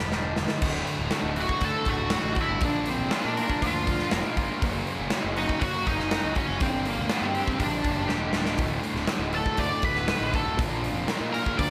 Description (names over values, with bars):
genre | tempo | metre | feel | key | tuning
quiet-loud alternative rock | 120 BPM | 4/4 | straight | unclear | A4 = 440 Hz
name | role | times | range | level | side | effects
octave-fuzz lead guitar | melody | 0.0-11.7 s | Bb3 to D6 | -31 LUFS | equal | distortion
twangy electric guitar | arpeggios | 0.0-8.6 s | D2 to Bb4 | -39 LUFS | equal | none
thick fuzz guitar | riff | 0.0-11.7 s | D2 to Bb4 | -34 LUFS | equal | distortion, slapback echo
fuzz picked electric bass | bass | 0.0-11.7 s | D1 to Bb2 | -36 LUFS | equal | overdrive
big rock drum kit | drums | 0.1-11.7 s | crash cymbal, hi-hat, kick drum, snare drum | -32 LUFS | equal | none
thick fuzz guitar | riff | 0.6-11.7 s | D2 to Bb4 | -36 LUFS | equal | distortion, slapback echo
room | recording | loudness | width
wet recital hall reverb, RT60 1.3 s | big arena sound | -27 LUFS | mono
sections
0.6-11.7 A section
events
drum fill 0.0-0.6, 8.1-8.6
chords
0.0 Gm; 0.6 D; 2.6 Bb; 4.6 F#; 6.6 Gm; 8.6 D; 10.6 Bb